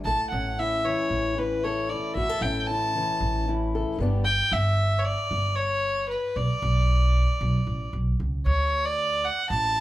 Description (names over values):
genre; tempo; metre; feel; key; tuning
indie folk with a building arrangement; 114 BPM; 4/4; straight; unclear; A4 = 440 Hz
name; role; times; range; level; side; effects
warm fiddle; melody; 0.0-9.8 s; B4 to A5; -26 LUFS; equal; none
fingerpicked acoustic archtop guitar; accompaniment; 0.0-4.2 s; G2 to A4; -30 LUFS; left 3 dB; none
upright bass; bass; 0.1-9.8 s; G1 to D2; -26 LUFS; right 1 dB; none
room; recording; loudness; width
light reverb; band playing live in one room; -23 LUFS; side -15 dB against mid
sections
0.1-8.5 A section; 8.5-9.8 B section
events
none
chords
0.1 A; 4.0 G5; 6.4 Bm; 8.5 D5